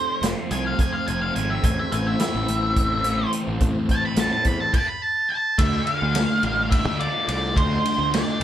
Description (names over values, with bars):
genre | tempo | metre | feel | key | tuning
psychedelic rock | 213 BPM (eighths) | 7/8 | straight | unclear | A4 = 439 Hz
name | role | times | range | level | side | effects
octave-fuzz lead guitar | melody | 0.0-8.4 s | C5 to B5 | -24 LUFS | right 1 dB | distortion
tonewheel organ | sustained chords | 0.0-4.7 s | E3 to C5 | -34 LUFS | right 3 dB | slow rotary speaker, chorus vibrato
fuzz guitar | riff | 0.0-8.4 s | F2 to F4 | -27 LUFS | left 1 dB | distortion, phaser
fuzz picked electric bass | bass | 0.2-8.4 s | F1 to E2 | -27 LUFS | equal | overdrive
vintage drum kit | drums | 0.2-8.4 s | crash cymbal, hi-hat, kick drum, ride cymbal, snare drum | -24 LUFS | equal | none
room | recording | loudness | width
light reverb | band playing live in one room | -20 LUFS | side -11 dB against mid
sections
0.0-5.6 A section; 5.6-8.4 B section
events
lead electric guitar solo 0.0-5.6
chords
0.0 F; 1.6 Am; 5.6 Dm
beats
0.23 0.51 0.80 1.08 1.36 | 1.64 1.92 2.21 2.49 2.77 3.05 3.33 | 3.62 3.90 4.18 4.46 4.75 5.03 5.31 | 5.59 5.87 6.15 6.43 6.72 7.00 7.28 | 7.56 7.84 8.12 8.41